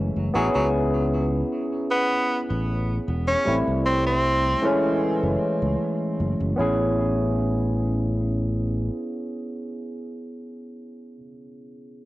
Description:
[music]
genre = vaporwave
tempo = 77 BPM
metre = 4/4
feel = straight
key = A major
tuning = A4 = 442 Hz
[part]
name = barky tine electric piano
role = accompaniment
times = 0.0-12.1 s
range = E3 to G#4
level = -25 LUFS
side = equal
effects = overdrive, lush chorus, cassette tape, tape echo
[part]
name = fingered electric bass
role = bass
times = 0.0-8.9 s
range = E1 to C#2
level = -25 LUFS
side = equal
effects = tube saturation
[part]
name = edgy tenor saxophone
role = melody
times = 0.3-4.7 s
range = F#3 to C#4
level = -26 LUFS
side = equal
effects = cassette tape, tape echo
[sound]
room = light reverb, studio reverb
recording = home recording on cassette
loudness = -21 LUFS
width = side -17 dB against mid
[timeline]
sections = 0.0-6.6 A section; 6.6-9.7 B section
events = none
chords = 0.4 Amaj9; 3.5 Am7; 4.6 F#m7; 6.6 Amaj9

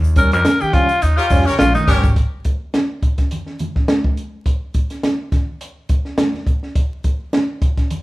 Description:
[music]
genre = funk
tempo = 105 BPM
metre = 4/4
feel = swing 56% on 16ths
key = unclear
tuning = A4 = 440 Hz
[part]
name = upright bass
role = bass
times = 0.0-2.2 s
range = G1 to F2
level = -18 LUFS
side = equal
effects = none
[part]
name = tube shaker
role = percussion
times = 0.0-2.2 s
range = none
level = -40 LUFS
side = left 4 dB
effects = none
[part]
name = breathy tenor saxophone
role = melody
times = 0.2-2.0 s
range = Db4 to Bb4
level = -17 LUFS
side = left 1 dB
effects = none
[part]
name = overdriven tine electric piano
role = stabs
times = 0.2-2.0 s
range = Eb3 to Db4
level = -23 LUFS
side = right 2 dB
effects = phaser
[part]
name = compact cocktail drum kit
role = drums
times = 0.2-8.0 s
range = hi-hat, kick drum, snare drum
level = -17 LUFS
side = equal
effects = none
[part]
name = congas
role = percussion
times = 0.2-8.0 s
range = none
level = -29 LUFS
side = right 1 dB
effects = none
[part]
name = clear horn section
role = second line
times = 1.2-2.1 s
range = G4 to Db5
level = -24 LUFS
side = left 1 dB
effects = none
[sound]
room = light reverb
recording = band playing live in one room, vinyl crackle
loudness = -15 LUFS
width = side -18 dB against mid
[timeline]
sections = 0.0-2.2 A section; 2.2-8.0 B section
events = tenor saxophone solo 0.0-2.2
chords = 0.0 Eb9; 2.2 N.C.

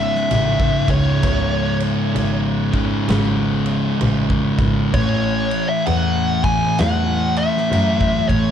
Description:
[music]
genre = stoner and doom metal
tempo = 65 BPM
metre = 4/4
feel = swing 62% on 8ths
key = C# minor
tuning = A4 = 441 Hz
[part]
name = fuzz lead guitar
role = melody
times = 0.0-8.5 s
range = C#5 to G#5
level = -22 LUFS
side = left 2 dB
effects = wah, distortion, digital delay
[part]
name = thick fuzz guitar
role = riff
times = 0.0-8.5 s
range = C#2 to A3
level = -22 LUFS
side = left 8 dB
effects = distortion
[part]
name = thick fuzz guitar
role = riff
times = 0.0-8.5 s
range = C#2 to A3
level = -22 LUFS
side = right 8 dB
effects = distortion
[part]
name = big rock drum kit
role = drums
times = 0.2-8.5 s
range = crash cymbal, kick drum, snare drum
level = -24 LUFS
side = equal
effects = none
[part]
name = clear double bass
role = bass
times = 0.3-8.5 s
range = G#1 to A2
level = -23 LUFS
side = equal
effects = overdrive
[sound]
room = studio reverb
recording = dark, warm production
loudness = -16 LUFS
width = side -9 dB against mid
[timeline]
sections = 0.0-8.5 A section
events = none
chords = 0.0 C#5; 4.9 A

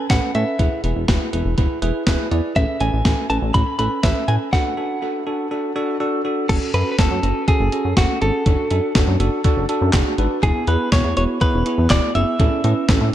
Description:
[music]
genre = synth-pop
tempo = 122 BPM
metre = 4/4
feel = straight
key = E mixolydian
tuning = A4 = 441 Hz
[part]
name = bell-like tine electric piano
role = accompaniment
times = 0.0-13.1 s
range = B3 to D5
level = -23 LUFS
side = right 2 dB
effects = dub echo, shimmer reverb
[part]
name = direct-recorded clean electric guitar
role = melody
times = 0.1-13.1 s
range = F#4 to B5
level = -24 LUFS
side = equal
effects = dub echo, shimmer reverb
[part]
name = chorused synth bass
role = bass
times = 0.1-13.1 s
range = E1 to A2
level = -20 LUFS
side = equal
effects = none
[part]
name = gated 80s digital drum machine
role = drums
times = 0.1-13.0 s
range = crash cymbal, handclaps, hi-hat, kick drum, snare drum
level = -19 LUFS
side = equal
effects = gated reverb, gated reverb snare, dub echo
[sound]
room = light reverb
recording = echo-heavy mix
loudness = -16 LUFS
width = side -12 dB against mid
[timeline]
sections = 0.0-6.5 A section; 6.5-13.1 B section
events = stop 4.5-6.5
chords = 0.0 Aadd9; 0.6 E; 2.6 Aadd9; 4.5 D; 6.5 F#m; 8.5 D/F#; 10.4 E; 12.4 A

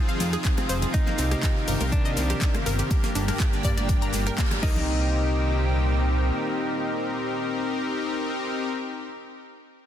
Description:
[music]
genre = progressive house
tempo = 122 BPM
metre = 4/4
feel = straight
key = C minor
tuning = A4 = 439 Hz
[part]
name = lush unison pad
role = sustained chords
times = 0.0-8.7 s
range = Bb2 to G4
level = -32 LUFS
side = right 2 dB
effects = chorus, sidechain pumping
[part]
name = soft supersaw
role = stabs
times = 0.0-8.7 s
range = G2 to Bb4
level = -29 LUFS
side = left 2 dB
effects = sidechain pumping, digital delay
[part]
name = analog pluck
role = arpeggios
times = 0.1-5.1 s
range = Bb3 to Bb5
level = -33 LUFS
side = equal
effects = chorus, sidechain pumping, digital delay
[part]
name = house drum kit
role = drums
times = 0.1-4.7 s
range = cabasa, crash cymbal, handclaps, hi-hat, rim click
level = -33 LUFS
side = left 1 dB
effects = overdrive, sidechain pumping on hats, sidechain pumping on perc, sidechain pumping on cymbals
[part]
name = fat analog bass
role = bass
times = 0.2-6.3 s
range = F1 to G2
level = -25 LUFS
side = equal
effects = sidechain pumping
[part]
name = damped 70s drum kit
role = drums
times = 0.2-4.6 s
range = hi-hat, snare drum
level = -41 LUFS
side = right 4 dB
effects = none
[part]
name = congas and bongos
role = percussion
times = 0.2-4.9 s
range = none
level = -38 LUFS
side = left 2 dB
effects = none
[part]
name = electronic kick drum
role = drums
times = 0.4-4.7 s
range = none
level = -24 LUFS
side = equal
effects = overdrive
[part]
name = direct-recorded clean electric guitar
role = melody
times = 0.9-8.7 s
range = D4 to Eb4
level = -34 LUFS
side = equal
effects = vintage 12-bit sampler grit, sidechain pumping, digital delay
[sound]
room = light reverb, digital ambience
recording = dense, heavily limited modern master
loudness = -22 LUFS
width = side -10 dB against mid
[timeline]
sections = 0.0-4.9 A section; 4.9-8.8 B section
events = drop 0.0-4.9; band accent 4.4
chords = 0.0 Fm7; 0.9 Cm7; 2.9 Gm; 4.6 Cm7

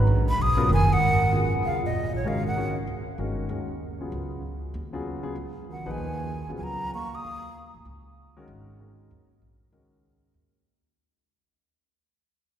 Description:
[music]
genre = modal jazz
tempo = 193 BPM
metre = 4/4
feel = swing 62% on 8ths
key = G# dorian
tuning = A4 = 440 Hz
[part]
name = warm grand piano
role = accompaniment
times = 0.0-10.6 s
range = A#2 to B4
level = -33 LUFS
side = left 2 dB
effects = none
[part]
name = upright bass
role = bass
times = 0.0-10.9 s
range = F#1 to D#2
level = -27 LUFS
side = equal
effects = none
[part]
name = breathy jazz flute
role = melody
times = 0.3-2.7, 5.7-7.8 s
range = C#5 to D#6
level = -28 LUFS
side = equal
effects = none
[part]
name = breathy bass clarinet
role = second line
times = 0.7-2.7, 5.7-7.7 s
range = A#2 to A#3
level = -31 LUFS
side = right 3 dB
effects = none
[sound]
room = wet cathedral reverb, RT60 4.5 s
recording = recorded in a church or concert hall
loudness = -24 LUFS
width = side -10 dB against mid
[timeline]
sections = 0.0-1.0 A section; 1.0-11.0 B section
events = flute solo 0.0-1.0; fade-out 1.0-11.0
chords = 0.0 G#m11; 1.0 G#9sus4

